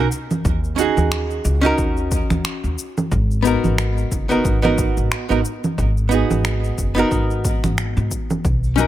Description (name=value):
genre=sunset chillout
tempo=90 BPM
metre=4/4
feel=swing 57% on 16ths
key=G# minor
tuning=A4 = 440 Hz
part: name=archtop guitar, miked and amplified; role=accompaniment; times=0.0-8.9 s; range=B3 to A#4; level=-20 LUFS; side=moving between left 7 dB and right 8 dB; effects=auto-pan, digital delay
part: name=upright bass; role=bass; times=0.0-8.9 s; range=F#1 to G#2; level=-21 LUFS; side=equal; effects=none
part: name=electronic shaker, congas and finger snaps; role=drums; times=0.1-8.9 s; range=none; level=-24 LUFS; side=right 1 dB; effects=none
part: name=electronic kick drum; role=drums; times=0.4-8.6 s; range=none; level=-23 LUFS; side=equal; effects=none
part: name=congas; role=percussion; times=8.8-8.9 s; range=none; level=-24 LUFS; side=left 4 dB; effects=none
room=light reverb, digital ambience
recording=none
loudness=-17 LUFS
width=side -13 dB against mid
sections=0.0-8.9 A section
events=none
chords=0.1 D#m7; 3.1 G#m7